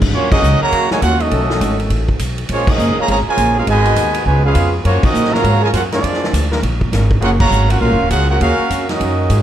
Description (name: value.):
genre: jazz, big band swing.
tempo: 203 BPM.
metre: 4/4.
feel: swing 62% on 8ths.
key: Eb minor.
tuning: A4 = 440 Hz.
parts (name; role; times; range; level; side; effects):
upright bass; bass; 0.0-9.4 s; Eb1 to Bb2; -16 LUFS; equal; none.
swinging big-band drum kit; drums; 0.0-9.4 s; crash cymbal, hi-hat, kick drum, ride cymbal, snare drum; -20 LUFS; equal; none.
clear trumpet section; melody; 0.1-9.4 s; Bb3 to Bb5; -17 LUFS; right 2 dB; none.
warm trombone section; second line; 0.1-9.4 s; Bb2 to Gb4; -22 LUFS; right 1 dB; none.
warm trombone section; sustained chords; 0.3-9.4 s; D#3 to Bb4; -26 LUFS; left 2 dB; none.
room: light reverb.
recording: dark, warm production.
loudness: -12 LUFS.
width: side -11 dB against mid.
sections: 0.1-9.4 A section.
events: band accent 0.3, 2.6, 5.0, 7.4.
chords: 0.1 Ebm9; 1.3 B13; 2.5 Bbm7; 3.7 Abm7; 4.3 Db7; 4.9 Gbmaj7; 6.0 Bb7; 7.2 Ebm11.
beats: | 0.13 0.42 0.72 1.01 | 1.31 1.60 1.90 2.20 | 2.49 2.79 3.08 3.38 | 3.67 3.97 4.26 4.56 | 4.85 5.15 5.45 5.74 | 6.04 6.33 6.63 6.92 | 7.22 7.52 7.81 8.11 | 8.41 8.70 9.00 9.30.